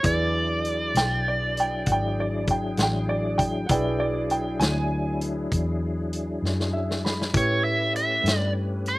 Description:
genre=slow blues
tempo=66 BPM (dotted quarters)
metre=12/8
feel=straight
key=E mixolydian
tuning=A4 = 440 Hz
part: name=biting lead guitar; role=melody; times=0.0-9.0 s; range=C#5 to E5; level=-26 LUFS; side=right 1 dB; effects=overdrive, slapback echo
part: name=clear grand piano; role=accompaniment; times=0.0-9.0 s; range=E4 to B5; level=-32 LUFS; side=right 2 dB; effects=slapback echo
part: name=vintage muted fingered electric bass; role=bass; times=0.0-9.0 s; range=G#1 to A2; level=-28 LUFS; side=equal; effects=none
part: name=vintage drum kit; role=drums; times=0.0-9.0 s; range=hi-hat, kick drum, snare drum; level=-26 LUFS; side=equal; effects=none
part: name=tonewheel organ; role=sustained chords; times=0.1-9.0 s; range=F#3 to B4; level=-31 LUFS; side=left 2 dB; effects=slow rotary speaker, chorus vibrato
part: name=warm upright piano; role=second line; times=1.0-5.2 s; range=D5 to G#5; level=-27 LUFS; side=right 1 dB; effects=none
room=little or no reverb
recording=recorded outdoors, with no room sound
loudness=-22 LUFS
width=side -19 dB against mid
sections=0.0-9.0 A section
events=drum fill 6.4-7.3; grand piano fill 6.4-7.3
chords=0.0 E9; 7.3 A9

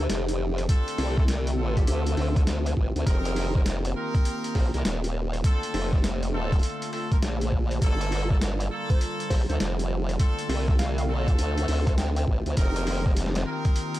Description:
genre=glitch hop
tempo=101 BPM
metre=4/4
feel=swing 64% on 16ths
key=G minor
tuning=A4 = 442 Hz
part: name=warbly tape-like pad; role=sustained chords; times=0.0-14.0 s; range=D3 to G4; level=-34 LUFS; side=left 1 dB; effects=chorus, built-in reverb, vintage 12-bit sampler grit, sidechain pumping
part: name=bright horn section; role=stabs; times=0.0-14.0 s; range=Bb3 to Bb4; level=-34 LUFS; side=equal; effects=sidechain pumping, analog delay
part: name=formant-sweep wobble bass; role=bass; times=0.0-13.4 s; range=Eb1 to D2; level=-26 LUFS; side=equal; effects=chorus
part: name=impact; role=sound effects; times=0.0-0.7 s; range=none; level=barely audible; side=none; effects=none
part: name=boom bap sampler-style drum kit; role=drums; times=0.1-14.0 s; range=hi-hat, rim click, snare drum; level=-34 LUFS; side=left 1 dB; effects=overdrive
part: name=electronic kick drum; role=drums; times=0.7-13.7 s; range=none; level=-22 LUFS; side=equal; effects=overdrive
part: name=plucky unison lead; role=melody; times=1.8-2.0, 8.9-12.2 s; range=G4 to G5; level=-39 LUFS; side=equal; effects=cassette tape, analog delay
room=little or no reverb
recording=dry, gritty hardware recording, transformer saturation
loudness=-23 LUFS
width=side -15 dB against mid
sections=0.0-14.0 A section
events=impact 0.0-0.7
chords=0.0 Gm7; 0.7 Dm7; 3.1 F7sus4; 5.4 Bbmaj7; 7.8 Gm7; 10.2 Dm7; 12.6 F7sus4

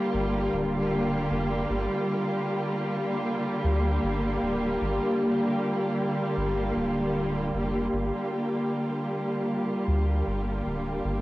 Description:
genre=ambient dub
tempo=77 BPM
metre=4/4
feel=straight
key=G minor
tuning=A4 = 440 Hz
part: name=dark symphonic string section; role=sustained chords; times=0.0-11.2 s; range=D3 to G4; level=-26 LUFS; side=equal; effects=none
part: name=soft dub sub bass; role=bass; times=0.1-11.2 s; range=D1 to D2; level=-30 LUFS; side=equal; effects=none
room=moderate small room reverb, RT60 0.5 s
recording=home recording on cassette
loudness=-25 LUFS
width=side -17 dB against mid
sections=0.0-11.2 A section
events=none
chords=0.0 Gm7

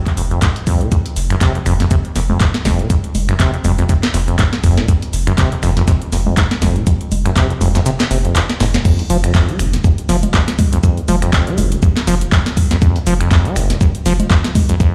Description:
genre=acid house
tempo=121 BPM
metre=4/4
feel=swing 56% on 16ths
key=F phrygian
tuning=A4 = 442 Hz
part: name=booming analog drum machine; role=drums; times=0.1-14.9 s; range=congas, crash cymbal, finger snaps, handclaps, hi-hat, shaker, snare drum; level=-23 LUFS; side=equal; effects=none
part: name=electronic kick drum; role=drums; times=0.1-14.9 s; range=none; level=-16 LUFS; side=equal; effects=none
part: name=acid bass, saw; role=riff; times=0.2-14.9 s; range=F1 to Ab3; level=-20 LUFS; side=equal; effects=sidechain pumping, digital delay
part: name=saturated sub bass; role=bass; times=0.2-14.7 s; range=F1 to C2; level=-21 LUFS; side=equal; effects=sidechain pumping
part: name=dusty soul sampler-style drum kit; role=drums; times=0.2-14.9 s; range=hi-hat, shaker, snare drum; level=-33 LUFS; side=equal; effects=none
room=light reverb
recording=played on a big sound system in a bare room, large studio reverb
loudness=-15 LUFS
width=mono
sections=0.0-8.9 A section; 8.9-14.9 B section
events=kick drops out 7.9-8.9; drum fill 8.5-8.9; drop 8.9-14.9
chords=none

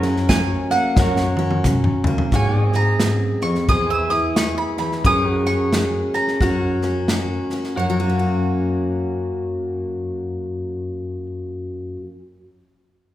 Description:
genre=honky-tonk and classic country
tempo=88 BPM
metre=4/4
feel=swing 60% on 8ths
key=F# major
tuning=A4 = 435 Hz
part: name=mandolin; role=melody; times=0.0-12.0 s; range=F#5 to E6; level=-23 LUFS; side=right 1 dB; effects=none
part: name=picked steel-string acoustic guitar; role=accompaniment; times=0.0-12.2 s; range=E2 to G#4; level=-24 LUFS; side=left 1 dB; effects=none
part: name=warm grand piano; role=accompaniment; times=0.0-2.3 s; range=F#4 to F#5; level=-32 LUFS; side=right 2 dB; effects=none
part: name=pedal steel guitar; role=sustained chords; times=0.0-11.3 s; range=B#3 to E5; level=-29 LUFS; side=left 1 dB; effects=none
part: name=tine electric piano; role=bass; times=0.0-12.0 s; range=E2 to G#2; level=-24 LUFS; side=equal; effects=medium stereo tremolo
part: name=natural country drum kit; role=drums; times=0.0-7.7 s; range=hi-hat, kick drum, snare drum, toms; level=-22 LUFS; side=equal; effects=none
room=wet recital hall reverb, RT60 1.7 s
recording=recorded in a church or concert hall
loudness=-18 LUFS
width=side -13 dB against mid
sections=0.0-2.3 A section; 2.3-7.8 B section; 7.8-10.5 C section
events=drum fill 1.0-2.3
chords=0.0 F#add9; 1.0 F#; 2.3 G#add9; 3.7 E; 5.0 F#add9; 6.4 F#

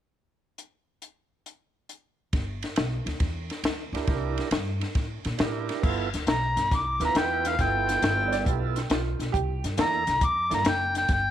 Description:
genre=electric blues shuffle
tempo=137 BPM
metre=4/4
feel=swing 67% on 8ths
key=G mixolydian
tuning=A4 = 440 Hz
part: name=compact cocktail drum kit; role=drums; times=0.6-11.2 s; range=crash cymbal, hi-hat, kick drum, ride cymbal, snare drum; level=-28 LUFS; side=left 1 dB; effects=none
part: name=upright bass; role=bass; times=2.3-11.3 s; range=F#1 to Bb2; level=-31 LUFS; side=equal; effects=none
part: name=tonewheel organ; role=accompaniment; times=3.9-10.6 s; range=Bb3 to B4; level=-32 LUFS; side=right 12 dB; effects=overdrive, slow rotary speaker
part: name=overdriven harmonica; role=melody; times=6.3-11.3 s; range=F5 to D6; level=-25 LUFS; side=left 1 dB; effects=none
part: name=clear upright piano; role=second line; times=8.3-9.6 s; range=F4 to D5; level=-33 LUFS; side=right 11 dB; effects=none
room=light reverb, studio reverb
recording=1960s-style stereo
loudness=-24 LUFS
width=side -11 dB against mid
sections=0.6-2.3 A section; 2.3-5.8 B section; 5.8-11.3 C section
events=none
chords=0.6 N.C.; 2.3 G5; 4.1 C7; 5.8 G13; 9.3 C13

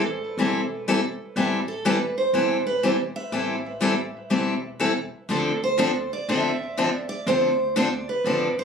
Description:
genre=acoustic string swing (jazz manouche)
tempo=122 BPM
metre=4/4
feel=swing 64% on 8ths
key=A minor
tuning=A4 = 440 Hz
part: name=picked steel-string acoustic guitar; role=melody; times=0.0-8.6 s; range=G4 to E5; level=-26 LUFS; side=right 4 dB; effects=tape echo
part: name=upright bass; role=bass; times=0.0-8.6 s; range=E1 to D2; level=-39 LUFS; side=right 1 dB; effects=none
part: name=picked steel-string acoustic guitar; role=accompaniment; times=0.4-8.5 s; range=D3 to A4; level=-23 LUFS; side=left 3 dB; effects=none
room=wet club reverb, RT60 0.5 s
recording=recorded on a phone in the room, studio ambience, compression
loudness=-21 LUFS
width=side -6 dB against mid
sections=0.0-8.6 A section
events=none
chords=0.0 Am7; 5.3 Dm7

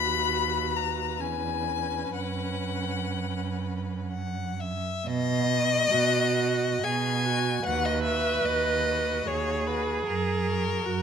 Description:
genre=classical, slow romantic movement for string quartet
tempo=60-76 BPM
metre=3/4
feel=rubato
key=B major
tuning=A4 = 440 Hz
part: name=rich violin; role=melody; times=0.0-11.0 s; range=F#4 to B5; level=-32 LUFS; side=left 12 dB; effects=none
part: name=rich violin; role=second line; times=0.0-11.0 s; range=A#4 to G#5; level=-29 LUFS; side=left 4 dB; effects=none
part: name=clear viola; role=accompaniment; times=0.0-11.0 s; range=C#4 to B4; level=-31 LUFS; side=right 4 dB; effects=none
part: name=rich cello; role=bass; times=0.0-11.0 s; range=D#2 to B2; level=-30 LUFS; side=right 5 dB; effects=none
room=moderate recital hall reverb, RT60 1.6 s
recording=close, detailed microphones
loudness=-25 LUFS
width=side -7 dB against mid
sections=0.0-5.1 A section; 5.1-11.0 B section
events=none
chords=0.0 B/D#; 1.2 C#m7/E; 2.2 F#sus4; 5.1 B; 7.6 B/D#; 10.1 F#

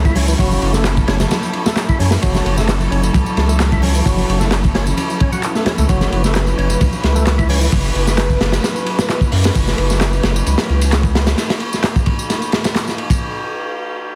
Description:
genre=breakbeat, breaks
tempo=131 BPM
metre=4/4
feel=straight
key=F# minor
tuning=A4 = 440 Hz
part: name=dark studio string section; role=sustained chords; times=0.0-11.4 s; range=F#3 to B4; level=-26 LUFS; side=equal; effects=sidechain pumping
part: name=saturated sub bass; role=bass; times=0.0-11.3 s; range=F#1 to F#2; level=-19 LUFS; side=equal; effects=tube saturation
part: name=percussive tonewheel organ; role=riff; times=0.1-7.7 s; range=E3 to F#4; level=-26 LUFS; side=equal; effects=overdrive, fast rotary speaker, dub echo
part: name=crunchy breakbeat drum kit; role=drums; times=0.1-13.2 s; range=hi-hat, kick drum, ride cymbal, snare drum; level=-20 LUFS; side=equal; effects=none
part: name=electronic tambourine and handclaps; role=drums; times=0.1-13.2 s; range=none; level=-29 LUFS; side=equal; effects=none
part: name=congas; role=percussion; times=0.2-7.6 s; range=none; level=-28 LUFS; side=equal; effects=none
room=light reverb, studio ambience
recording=heavily compressed radio sound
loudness=-16 LUFS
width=mono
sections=0.0-13.2 A section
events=drop 0.0-13.2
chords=0.0 F#m7

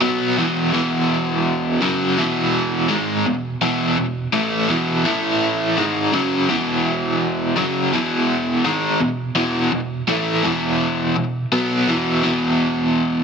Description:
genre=rock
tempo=84 BPM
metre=4/4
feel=straight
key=E major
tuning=A4 = 440 Hz
part: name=overdriven electric guitar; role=solo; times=0.0-13.2 s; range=E2 to B3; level=-17 LUFS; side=equal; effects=tremolo, slapback echo
room=light reverb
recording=dense, heavily limited modern master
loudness=-17 LUFS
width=side -6 dB against mid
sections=0.0-6.5 A section; 6.5-13.2 A section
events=none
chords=0.0 E; 5.1 A5; 5.8 F#sus2; 6.5 E5

